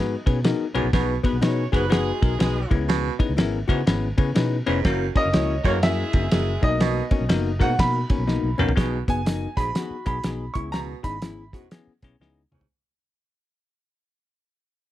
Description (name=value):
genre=uptempo 1960s-style soul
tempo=122 BPM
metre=4/4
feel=swing 63% on 8ths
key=B major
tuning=A4 = 439 Hz
part: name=clear grand piano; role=melody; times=0.0-0.2, 5.2-11.5 s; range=C#5 to C#6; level=-28 LUFS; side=right 2 dB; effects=none
part: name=bell-like tine electric piano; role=accompaniment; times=0.0-12.6 s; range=A#3 to B4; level=-28 LUFS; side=left 6 dB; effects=none
part: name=vintage muted fingered electric bass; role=bass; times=0.0-12.7 s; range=E1 to C#3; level=-26 LUFS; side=equal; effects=none
part: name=hollow-body jazz guitar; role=riff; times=0.3-12.6 s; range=B3 to G#4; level=-30 LUFS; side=left 7 dB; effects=none
part: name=cloth-damped thuddy drum kit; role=drums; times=0.3-12.7 s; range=hi-hat, kick drum, ride cymbal, snare drum, toms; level=-23 LUFS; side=equal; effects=none
part: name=warm baritone saxophone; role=riff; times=0.8-12.7 s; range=E2 to B2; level=-30 LUFS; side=right 13 dB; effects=none
part: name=warm horn section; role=second line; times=1.2-6.7 s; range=G#3 to C#5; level=-31 LUFS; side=right 4 dB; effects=none
room=light reverb, small room ambience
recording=none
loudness=-20 LUFS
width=side -14 dB against mid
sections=0.0-8.8 A section; 8.8-12.7 B section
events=drum fill 8.3-8.8, 12.2-12.7; fade-out 8.8-12.7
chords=0.0 G#m7; 0.9 B6; 2.6 C#m7; 4.9 F#7; 6.6 Bmaj7; 8.8 B6; 10.5 C#m7